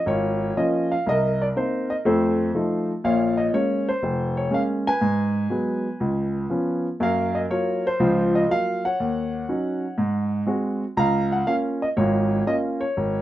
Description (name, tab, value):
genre	solo jazz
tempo	121 BPM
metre	4/4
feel	swing 69% on 8ths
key	Db major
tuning	A4 = 437 Hz
part	warm grand piano	solo	0.0-13.2 s	F1 to Bb5	-20 LUFS	equal	none
room	light reverb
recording	minimal, uncompressed stereo recording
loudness	-20 LUFS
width	side -14 dB against mid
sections	0.0-13.2 A section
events	none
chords	0.0 Db6; 1.1 Cm7; 2.0 F7; 3.0 Bbm7; 5.0 Abm7; 6.0 Db7; 7.0 Gbmaj7; 9.0 Ebm7; 10.0 Ab7; 11.0 Db6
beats	0.07 0.57 | 1.06 1.56 2.05 2.54 | 3.04 3.53 4.03 4.52 | 5.02 5.51 6.01 6.50 | 7.00 7.49 7.99 8.49 | 8.98 9.48 9.97 10.47 | 10.97 11.46 11.96 12.46 | 12.96